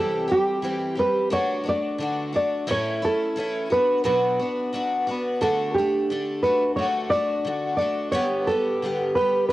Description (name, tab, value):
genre	rock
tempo	88 BPM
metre	4/4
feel	straight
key	D major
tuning	A4 = 439 Hz
part	nylon-string guitar	melody	0.0-9.5 s	G4 to D5	-23 LUFS	right 1 dB	cassette tape
part	picked twelve-string acoustic guitar	accompaniment	0.0-9.5 s	A2 to G4	-26 LUFS	left 1 dB	none
room	light reverb, small room ambience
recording	home recording on cassette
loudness	-21 LUFS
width	side -16 dB against mid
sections	0.0-9.5 A section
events	none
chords	0.0 C; 1.3 D; 2.7 A; 3.7 Bm; 5.4 D; 8.1 G/D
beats	0.64 1.32 2.00 | 2.69 3.37 4.05 4.74 | 5.42 6.10 6.78 7.46 | 8.15 8.83 9.51